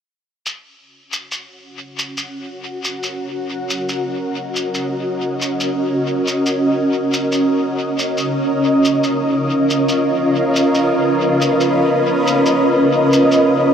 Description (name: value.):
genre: ambient dub.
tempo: 70 BPM.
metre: 4/4.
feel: swing 56% on 16ths.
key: Eb minor.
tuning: A4 = 440 Hz.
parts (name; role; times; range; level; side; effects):
granular cloud pad; sustained chords; 2.1-13.7 s; Db4 to Eb5; -15 LUFS; equal; built-in reverb.
shaker; drums; 0.5-13.5 s; none; -26 LUFS; equal; dub echo.
room: wet huge ambient reverb, RT60 7.3 s.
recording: dreamy mix soaked in reverb.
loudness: -15 LUFS.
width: side -8 dB against mid.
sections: 0.5-13.7 A section.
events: fade-in on ambient pad 0.5-13.7.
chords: 0.5 Ebm7; 7.3 Db13.